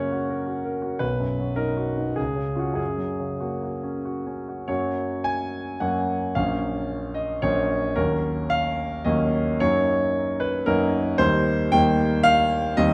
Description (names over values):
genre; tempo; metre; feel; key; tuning
classical, romantic character piece for solo piano; 92-115 BPM; 3/4; rubato; F# major; A4 = 440 Hz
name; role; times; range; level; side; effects
clear concert grand piano; solo; 0.0-12.9 s; A#1 to G#5; -24 LUFS; equal; none
room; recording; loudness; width
moderate recital hall reverb, RT60 1.4 s; none; -24 LUFS; mono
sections
0.0-4.7 A section; 4.7-12.9 B section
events
none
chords
0.0 F#; 1.0 B; 2.2 C#; 2.8 F#; 6.3 F#/A#; 8.0 D#m7; 9.6 D#m/F#; 11.2 Eb6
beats
0.47 | 1.02 1.59 2.18 | 2.79 3.42 4.06 | 4.69 5.25 5.80 | 6.35 6.89 7.43 | 7.97 8.52 9.06 | 9.61 10.14 10.67 | 11.20 11.72 12.25 | 12.79